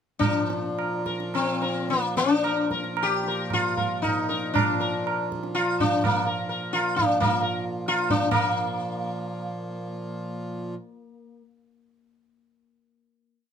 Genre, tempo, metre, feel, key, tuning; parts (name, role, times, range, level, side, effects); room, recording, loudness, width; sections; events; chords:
indian classical, Hindustani; 106-153 BPM; 4/4; straight; Bb raga bilaval; A4 = 442 Hz
sitar; melody; 0.2-11.4 s; Bb3 to Bb4; -25 LUFS; left 2 dB
hand-pumped harmonium; drone; 0.2-10.8 s; Bb2 to F3; -32 LUFS; right 1 dB
tabla; percussion; 0.2-8.5 s; -28 LUFS; right 4 dB
light reverb; close, detailed microphones; -23 LUFS; side -8 dB against mid
0.2-8.3 theme; 8.3-10.0 final chord
speeding up 0.2-10.0